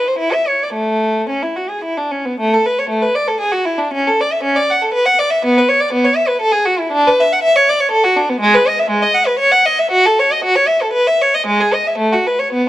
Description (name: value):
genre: classical, baroque-style suite movement for unaccompanied violin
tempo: 106-124 BPM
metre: 3/4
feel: rubato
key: A major, E major from 8.4 s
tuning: A4 = 440 Hz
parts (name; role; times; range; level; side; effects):
- rich violin; solo; 0.0-12.7 s; G#3 to F#5; -12 LUFS; equal; none
room: light reverb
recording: close, detailed microphones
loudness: -12 LUFS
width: side -14 dB against mid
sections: 0.0-2.4 A section; 2.4-12.7 B section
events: none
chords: none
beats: 0.19 | 0.75 1.29 1.83 | 2.38 2.89 3.39 | 3.92 4.43 4.93 | 5.44 5.93 6.42 | 6.94 7.45 7.94 | 8.43 8.92 9.41 | 9.94 10.46 10.97 | 11.48 12.00 12.52